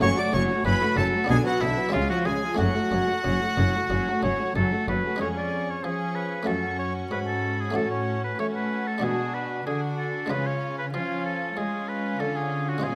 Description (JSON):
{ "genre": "classical, baroque-style concerto movement with solo episodes", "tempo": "94 BPM", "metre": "4/4", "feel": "straight", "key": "F# minor", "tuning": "A4 = 438 Hz", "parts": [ { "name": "clear chamber violin section", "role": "melody", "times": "0.0-12.9 s", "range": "E5 to D6", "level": "-40 LUFS", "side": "equal", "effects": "none" }, { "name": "clear oboe", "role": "melody", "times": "0.0-12.9 s", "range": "E4 to D5", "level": "-31 LUFS", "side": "equal", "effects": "none" }, { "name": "rich chamber violin section", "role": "second line", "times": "0.0-12.9 s", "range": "B3 to G#4", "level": "-35 LUFS", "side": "equal", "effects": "none" }, { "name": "buff-stop harpsichord", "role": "accompaniment", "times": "0.0-12.9 s", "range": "E#2 to G#4", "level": "-34 LUFS", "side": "equal", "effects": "none" }, { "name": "rich symphonic viola section", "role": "accompaniment", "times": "0.0-12.9 s", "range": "D3 to D4", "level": "-34 LUFS", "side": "equal", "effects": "none" }, { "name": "rich chamber cello section", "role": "bass", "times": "0.0-12.9 s", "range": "E#2 to A3", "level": "-33 LUFS", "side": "equal", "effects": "none" }, { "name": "warm chamber double bass section", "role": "bass", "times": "0.0-5.0 s", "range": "F#1 to C#2", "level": "-31 LUFS", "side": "equal", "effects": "none" } ], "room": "moderate recital hall reverb, RT60 1.4 s", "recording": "none", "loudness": "-26 LUFS", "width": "mono", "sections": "0.0-5.2 A section; 5.2-12.9 B section", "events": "none", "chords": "0.0 F#m; 1.3 Bm; 1.9 C#; 2.6 F#m; 5.2 C#/E#; 6.5 F#m; 7.8 F#m/A; 9.0 G#m7b5/B; 10.3 C#" }